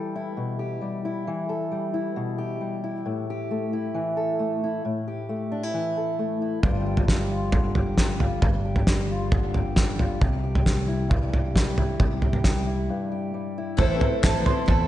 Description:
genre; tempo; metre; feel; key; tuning
indie folk with a building arrangement; 134 BPM; 4/4; straight; C major; A4 = 440 Hz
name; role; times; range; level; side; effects
fingerpicked old ladder-braced acoustic guitar; accompaniment; 0.0-13.8 s; G2 to A4; -27 LUFS; left 1 dB; slapback echo
fingered electric bass; bass; 6.6-14.9 s; G1 to E2; -28 LUFS; equal; none
cloth-damped thuddy drum kit; drums; 6.6-14.8 s; kick drum, snare drum, toms; -22 LUFS; equal; none
felt-muted upright piano; accompaniment; 13.8-14.9 s; A1 to C5; -30 LUFS; right 3 dB; none
picked twelve-string acoustic guitar; accompaniment; 13.8-14.9 s; A2 to A4; -27 LUFS; left 6 dB; slapback echo
dark upright piano; arpeggios; 13.8-14.9 s; C5 to C6; -27 LUFS; right 6 dB; analog delay
group handclap; percussion; 14.2-14.3 s; none; -35 LUFS; left 5 dB; none
room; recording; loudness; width
moderate lush hall reverb, RT60 2.3 s; big arena sound, nothing above 10.7 kHz; -22 LUFS; side -13 dB against mid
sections
0.0-13.8 A section; 13.8-14.9 B section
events
break 12.9-13.8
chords
0.0 Em; 3.1 A5; 6.6 G7sus4; 10.2 C; 13.8 Am

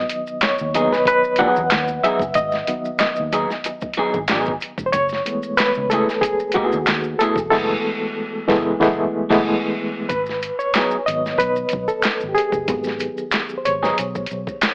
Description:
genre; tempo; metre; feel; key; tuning
R&B, neo-soul; 93 BPM; 4/4; swing 54% on 16ths; unclear; A4 = 440 Hz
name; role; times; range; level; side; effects
reed electric piano; accompaniment; 0.0-14.7 s; D#3 to F#5; -19 LUFS; equal; fast tremolo
vintage muted fingered electric bass; bass; 0.0-14.7 s; E1 to E2; -31 LUFS; equal; none
boom bap sampler-style drum kit; drums; 0.1-14.7 s; crash cymbal, handclaps, hi-hat, kick drum, snare drum; -23 LUFS; equal; none
maracas and finger snaps; percussion; 0.1-14.7 s; none; -27 LUFS; equal; none
electric guitar through a small old amp; second line; 0.7-14.0 s; F#3 to G#4; -21 LUFS; equal; wide subtle chorus
room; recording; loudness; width
moderate studio reverb, RT60 0.8 s; AM radio sound; -17 LUFS; side -39 dB against mid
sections
0.0-10.1 A section; 10.1-14.7 B section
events
reed electric piano solo 0.0-10.1, 10.1-14.7; band accent 7.5-10.1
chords
0.0 G#m7; 4.9 F#m11; 10.1 G#m7

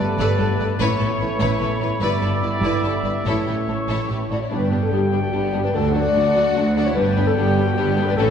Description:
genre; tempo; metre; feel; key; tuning
cinematic, heroic adventure film score; 148 BPM; 3/4; straight; G lydian; A4 = 440 Hz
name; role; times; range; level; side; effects
warm symphonic violin section; melody; 0.0-8.3 s; A3 to D5; -31 LUFS; left 5 dB; none
clear oboe; second line; 0.0-4.3 s; B4 to E5; -31 LUFS; left 1 dB; none
mellow hollow small flute group; second line; 0.0-8.3 s; F#4 to C#6; -29 LUFS; equal; none
warm symphonic violin section; second line; 0.0-8.3 s; A3 to B4; -30 LUFS; left 5 dB; none
warm studio viola section; accompaniment; 0.0-8.3 s; E3 to A4; -29 LUFS; right 1 dB; none
warm French horn section; sustained chords; 0.0-8.3 s; B3 to D5; -25 LUFS; left 4 dB; none
warm trombone section; sustained chords; 0.0-8.3 s; D3 to D4; -31 LUFS; right 3 dB; none
warm trumpet section; stabs; 0.0-8.3 s; C#5 to A5; -29 LUFS; left 1 dB; none
rich studio double bass section; bass; 0.0-8.3 s; G1 to D2; -24 LUFS; right 2 dB; none
warm symphonic cello section; bass; 0.0-8.3 s; D2 to A2; -25 LUFS; equal; none
room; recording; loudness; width
wet scoring stage reverb, RT60 1.8 s; heard from further back in the room; -18 LUFS; side -8 dB against mid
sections
0.0-4.5 A section; 4.5-8.3 B section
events
build-up 0.0-4.5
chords
0.0 Gadd9; 0.8 Aadd9; 2.0 G6; 3.3 A; 4.5 G; 5.7 D; 7.0 G

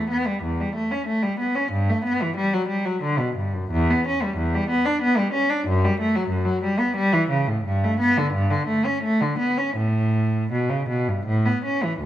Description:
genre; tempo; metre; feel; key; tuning
classical, baroque-style suite movement for unaccompanied cello; 79-95 BPM; 3/4; rubato; unclear; A4 = 440 Hz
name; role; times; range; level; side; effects
rich cello; solo; 0.0-12.1 s; D2 to D4; -20 LUFS; equal; none
room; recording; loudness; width
moderate recital hall reverb, RT60 1.3 s; close, detailed microphones; -20 LUFS; side -12 dB against mid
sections
0.0-12.0 A section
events
none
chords
none

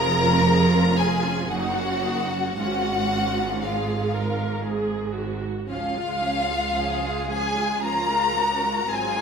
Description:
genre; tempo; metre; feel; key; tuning
classical, slow romantic movement for string orchestra; 54-62 BPM; 3/4; rubato; Db major; A4 = 442 Hz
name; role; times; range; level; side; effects
clear chamber violin section; melody; 0.0-9.2 s; F4 to Bb5; -28 LUFS; left 4 dB; none
rich chamber violin section; second line; 0.0-9.2 s; F4 to Bb5; -25 LUFS; left 2 dB; none
warm chamber viola section; accompaniment; 0.0-9.2 s; F3 to Bb4; -30 LUFS; right 3 dB; none
clear chamber double bass section; bass; 0.0-9.2 s; F1 to Db2; -30 LUFS; right 4 dB; none
clear studio cello section; bass; 0.0-9.2 s; F2 to Ab4; -26 LUFS; right 3 dB; none
room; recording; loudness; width
moderate concert hall reverb, RT60 2.1 s; minimal, uncompressed stereo recording; -21 LUFS; side -6 dB against mid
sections
0.0-5.7 A section; 5.7-9.2 B section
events
none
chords
0.0 Db/F; 1.5 Ebm7/Gb; 2.6 Db/Ab; 4.7 Gbsus2/Ab; 5.7 Db

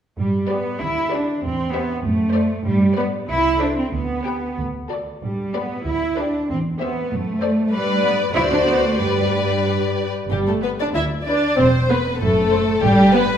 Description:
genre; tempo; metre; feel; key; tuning
quick classical-period movement for symphony orchestra; 95 BPM; 2/4; rubato; G major; A4 = 440 Hz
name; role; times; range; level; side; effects
warm studio cello section; bass; 0.2-13.3 s; D2 to E4; -22 LUFS; right 1 dB; none
warm studio double bass section; bass; 0.2-13.3 s; E1 to G2; -25 LUFS; right 1 dB; none
clear studio violin section; melody; 0.5-13.4 s; B4 to G5; -26 LUFS; left 3 dB; none
warm studio violin section; second line; 0.5-13.4 s; G4 to E5; -23 LUFS; left 3 dB; none
warm studio viola section; accompaniment; 0.5-13.2 s; G3 to B4; -21 LUFS; right 1 dB; none
room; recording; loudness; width
wet recital hall reverb, RT60 1.5 s; recorded in a church or concert hall; -17 LUFS; side -9 dB against mid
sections
0.2-10.3 A section; 10.3-13.4 A section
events
none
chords
0.2 G; 1.4 C/E; 2.0 D7/F#; 2.7 G; 3.3 Am/C; 3.9 G/D; 4.6 D; 5.2 G; 6.5 C/E; 7.1 D7/F#; 7.7 G; 8.4 D7; 9.0 G; 11.6 C/E; 12.2 F#dim; 12.8 G

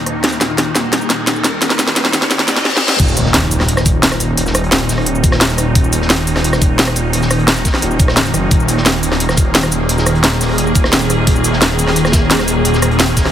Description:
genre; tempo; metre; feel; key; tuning
dark technical drum and bass; 174 BPM; 4/4; straight; unclear; A4 = 440 Hz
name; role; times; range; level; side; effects
swarming drone; sustained chords; 0.0-13.3 s; Eb3 to Ab4; -19 LUFS; equal; built-in reverb, sidechain pumping
wide detuned saw bass; bass; 0.0-13.3 s; Eb1 to Eb2; -17 LUFS; equal; chorus, overdrive
riser, reverse cymbal and impact; sound effects; 0.1-4.4 s; none; -21 LUFS; left 1 dB; none
drum and bass drum kit; drums; 0.1-13.3 s; crash cymbal, hi-hat, rim click, shaker, snare drum; -15 LUFS; equal; none
crunchy breakbeat drum kit; drums; 3.0-13.3 s; hi-hat, snare drum; -23 LUFS; equal; high-pass filter on hats, high-pass filter on snare, high-pass filter on room
electronic kick drum; drums; 3.0-13.2 s; none; -13 LUFS; equal; none
room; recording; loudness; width
light reverb; heavily compressed radio sound, multiband compression, high-pass filter; -11 LUFS; side -10 dB against mid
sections
0.0-3.0 A section; 3.0-13.3 B section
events
build-up 0.0-3.0; drum fill 0.0-2.7, 2.7-3.0; riser 0.1-2.7; filter sweep 0.0-3.0; reverse cymbal 2.3-3.0; drop 3.0-13.3; impact 3.0-4.4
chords
0.0 Eb5

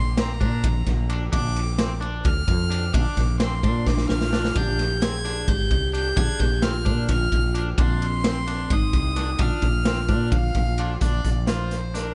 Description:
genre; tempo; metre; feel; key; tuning
progressive instrumental, band music in an uneven meter; 260 BPM (eighths); 7/8; straight; Bb mixolydian; A4 = 441 Hz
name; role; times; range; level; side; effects
rich violin; melody; 0.0-12.1 s; F4 to Ab6; -32 LUFS; equal; dub echo
woody fretless electric bass; bass; 0.0-12.1 s; Ab1 to Bb2; -27 LUFS; equal; none
electric guitar at the edge of break-up; arpeggios; 0.2-12.1 s; C4 to F4; -37 LUFS; equal; none
raw garage drum kit; drums; 0.2-12.1 s; hi-hat, kick drum, ride cymbal, snare drum; -27 LUFS; equal; none
vibraphone with hard mallets; second line; 3.9-10.8 s; C4 to Ab4; -33 LUFS; equal; dub echo
room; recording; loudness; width
little or no reverb; echo-heavy mix, nothing above 10.7 kHz; -23 LUFS; mono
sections
0.0-11.0 A section; 11.0-12.1 B section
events
drum fill 3.9-4.6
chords
0.0 Bb; 4.6 Fmadd9; 11.0 Bb

